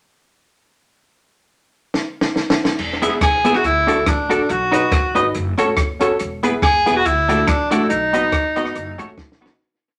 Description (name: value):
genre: ska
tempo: 141 BPM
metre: 4/4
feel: swing 55% on 8ths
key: E major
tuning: A4 = 440 Hz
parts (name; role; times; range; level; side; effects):
- compact cocktail drum kit; drums; 1.9-9.6 s; crash cymbal, hi-hat, kick drum, rim click, snare drum; -22 LUFS; equal; tape echo
- upright bass; bass; 2.8-9.5 s; E1 to D2; -31 LUFS; equal; none
- semi-hollow electric guitar; accompaniment; 3.0-9.5 s; B3 to E5; -23 LUFS; equal; none
- dark upright piano; stabs; 3.0-9.6 s; A3 to B4; -24 LUFS; equal; none
- warm tenor saxophone; melody; 3.2-9.1 s; D4 to G#4; -20 LUFS; equal; none
room: wet studio reverb, RT60 0.6 s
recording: none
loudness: -18 LUFS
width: mono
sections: 1.1-2.8 pickup bar; 2.8-9.6 head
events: drum fill 1.9-2.8, 9.2-9.6; fade-out 7.9-9.6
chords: 1.1 N.C.; 2.8 E; 3.6 D; 4.5 B; 5.3 F#m; 6.2 E; 7.0 D; 7.9 B; 8.8 F#m; 9.2 B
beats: | 1.09 1.51 1.94 2.36 | 2.79 3.21 3.64 4.07 | 4.49 4.92 5.34 5.77 | 6.20 6.62 7.05 7.48 | 7.90 8.33 8.75 9.18